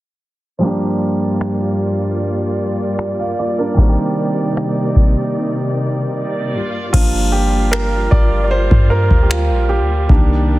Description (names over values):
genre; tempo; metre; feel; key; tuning
contemporary R&B; 76 BPM; 4/4; straight; unclear; A4 = 441 Hz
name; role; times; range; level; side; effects
warm grand piano; accompaniment; 0.6-10.6 s; Eb3 to F5; -18 LUFS; right 2 dB; none
warm studio string section; sustained chords; 0.6-10.6 s; G2 to D5; -21 LUFS; equal; none
booming analog drum machine; drums; 1.4-10.3 s; crash cymbal, finger snaps, kick drum; -13 LUFS; equal; soft clipping on snare
clean 808-style bass; bass; 6.9-10.6 s; G1 to G2; -16 LUFS; equal; none
room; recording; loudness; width
studio ambience; dense, heavily limited modern master, low-pass filter; -14 LUFS; side -17 dB against mid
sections
0.6-6.9 A section; 6.9-10.6 B section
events
filter sweep 0.6-6.9; break 5.4-6.9; grand piano solo 6.9-10.6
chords
0.6 Gm7; 3.8 Cm7; 6.5 Gm7